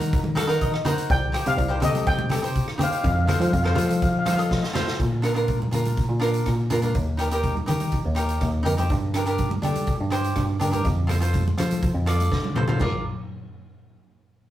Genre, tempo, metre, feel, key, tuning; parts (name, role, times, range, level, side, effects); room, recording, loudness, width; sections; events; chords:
calypso; 123 BPM; 4/4; straight; Bb major; A4 = 441 Hz
cavaquinho; accompaniment; 0.0-13.0 s; D4 to F5; -27 LUFS; equal
bell-like tine electric piano; bass; 0.0-13.0 s; Bb1 to G3; -24 LUFS; equal; medium stereo tremolo
street-band drum kit; drums; 0.0-12.9 s; crash cymbal, hi-hat, kick drum, rim click, snare drum, toms; -27 LUFS; equal
congas; percussion; 0.0-13.0 s; -29 LUFS; right 1 dB
steel pan; melody; 1.1-4.4 s; Eb5 to G5; -26 LUFS; left 2 dB
wet small room reverb, RT60 0.5 s; rough rehearsal-room recording; -21 LUFS; side -13 dB against mid
0.0-5.0 A section; 5.0-12.8 B section; 12.8-14.5 C section
cavaquinho fill 0.1-1.1, 11.8-12.8; drum fill 4.5-5.0, 12.2-12.8
0.0 Ebm; 1.1 Cm; 3.0 F; 5.0 Bb; 6.9 Eb; 8.9 Gmadd9; 10.8 F; 12.8 Bb